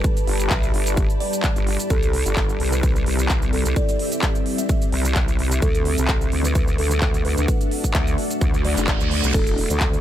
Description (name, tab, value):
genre	bass house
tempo	129 BPM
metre	4/4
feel	swing 54% on 16ths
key	unclear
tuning	A4 = 438 Hz
part	deep dark ambient pad	sustained chords	0.0-10.0 s	G3 to D5	-29 LUFS	equal	chorus, built-in reverb, sidechain pumping
part	vowel-sweep wobble bass	bass	0.0-10.0 s	E1 to D2	-22 LUFS	equal	chorus, overdrive, sidechain pumping
part	big-room dance drum kit	drums	0.0-10.0 s	cabasa, crash cymbal, handclaps, hi-hat	-27 LUFS	equal	none
part	electronic kick drum	drums	0.0-9.9 s	none	-21 LUFS	equal	none
part	ethereal airy pad	texture	0.0-10.0 s	C4 to B5	-30 LUFS	left 2 dB	ensemble chorus, built-in reverb, tremolo, sidechain pumping
part	buzzing kalimba	melody	0.5-9.5 s	A4 to E5	-29 LUFS	right 2 dB	digital delay
part	reverse cymbal	sound effects	8.6-9.3 s	none	-28 LUFS	right 6 dB	none
room	little or no reverb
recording	none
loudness	-18 LUFS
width	side -12 dB against mid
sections	0.0-10.0 A section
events	reverse cymbal 8.6-9.3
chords	0.0 G; 1.9 C; 5.6 D; 9.3 Em